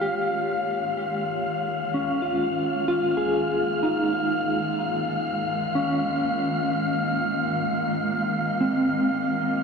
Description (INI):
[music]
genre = ambient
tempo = 63 BPM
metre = 4/4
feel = straight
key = unclear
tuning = A4 = 443 Hz
[part]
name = granular cloud pad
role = sustained chords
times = 0.0-9.6 s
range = Eb3 to F5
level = -30 LUFS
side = right 1 dB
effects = built-in reverb, shimmer reverb
[part]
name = mellow electric guitar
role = arpeggios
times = 0.0-9.6 s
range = C4 to Ab4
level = -26 LUFS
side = equal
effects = tremolo, ping-pong delay, shimmer reverb
[part]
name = organ-like drone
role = drone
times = 0.0-9.6 s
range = Eb3 to Bb3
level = -35 LUFS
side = right 3 dB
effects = ensemble chorus, built-in reverb
[part]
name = wind-like tuned noise texture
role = texture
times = 0.0-9.6 s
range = F5 to F6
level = -27 LUFS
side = left 2 dB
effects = built-in reverb, shimmer reverb
[sound]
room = wet cathedral reverb, RT60 6.1 s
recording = dark, warm production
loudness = -22 LUFS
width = side -5 dB against mid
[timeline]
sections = 0.0-9.6 A section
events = fade-in on ambient pad 0.0-9.6; fade-in on synth drone 0.0-9.6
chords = 0.0 Db/Eb